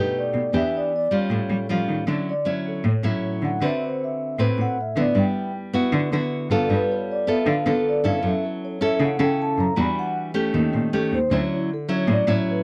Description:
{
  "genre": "bossa nova",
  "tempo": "156 BPM",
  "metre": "4/4",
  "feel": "straight",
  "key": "D major",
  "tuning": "A4 = 440 Hz",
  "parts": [
    { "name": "vibraphone with soft mallets", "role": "melody", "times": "0.0-12.6 s", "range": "E4 to B5", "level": "-28 LUFS", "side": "equal", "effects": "none" },
    { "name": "nylon-string guitar", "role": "accompaniment", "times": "0.0-12.6 s", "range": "A2 to B4", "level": "-26 LUFS", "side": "equal", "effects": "none" },
    { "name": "warm cello", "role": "bass", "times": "0.0-12.4 s", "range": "D2 to G3", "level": "-26 LUFS", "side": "equal", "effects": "none" }
  ],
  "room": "little or no reverb",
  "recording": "dry, close 1970s-style studio recording",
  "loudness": "-23 LUFS",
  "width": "mono",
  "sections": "0.0-2.1 A section; 2.1-12.6 B section",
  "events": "vibraphone solo 2.1-12.6",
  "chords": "0.0 B7alt; 0.5 Em7; 1.3 Aaug7; 2.1 Dmaj9; 3.6 D13; 5.2 Gmaj13; 6.7 G9; 8.2 F#m7; 9.8 Em9; 10.5 Eb7#11; 11.3 Dmaj9",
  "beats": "0.14 | 0.53 0.92 1.30 1.69 | 2.07 2.46 2.84 3.23 | 3.61 4.00 4.38 4.77 | 5.15 5.54 5.92 6.31 | 6.69 7.08 7.46 7.84 | 8.23 8.61 9.00 9.38 | 9.77 10.15 10.54 10.92 | 11.31 11.69 12.08 12.46"
}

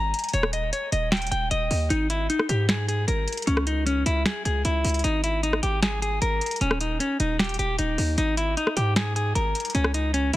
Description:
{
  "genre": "hip hop, trap",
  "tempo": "153 BPM",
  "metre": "4/4",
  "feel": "half-time",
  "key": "unclear",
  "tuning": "A4 = 440 Hz",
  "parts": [
    { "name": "clean electric guitar", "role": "melody", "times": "0.0-10.4 s", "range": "C#4 to A#5", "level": "-26 LUFS", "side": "left 1 dB", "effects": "ping-pong delay" },
    { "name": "hard-hitting 808-style bass", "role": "bass", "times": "0.0-10.4 s", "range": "D#1 to G#2", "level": "-26 LUFS", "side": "equal", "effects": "none" },
    { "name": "booming analog drum machine", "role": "drums", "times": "0.1-10.4 s", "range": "finger snaps, hi-hat, rim click, snare drum", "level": "-28 LUFS", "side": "equal", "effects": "overdrive, vintage 12-bit sampler grit" }
  ],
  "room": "digital ambience",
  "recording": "dense, heavily limited modern master",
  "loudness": "-22 LUFS",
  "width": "side -16 dB against mid",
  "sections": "0.0-1.9 A section; 1.9-10.4 B section",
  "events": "none",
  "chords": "0.3 D#7; 1.9 G#sus2; 3.5 C#m; 5.0 G#sus2; 6.6 D#7; 8.2 G#sus2; 9.7 N.C.",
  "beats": "| 0.34 0.73 1.12 1.51 | 1.90 2.30 2.69 3.08 | 3.47 3.86 4.26 4.65 | 5.04 5.43 5.83 6.22 | 6.61 7.00 7.39 7.79 | 8.18 8.57 8.96 9.35 | 9.75 10.14"
}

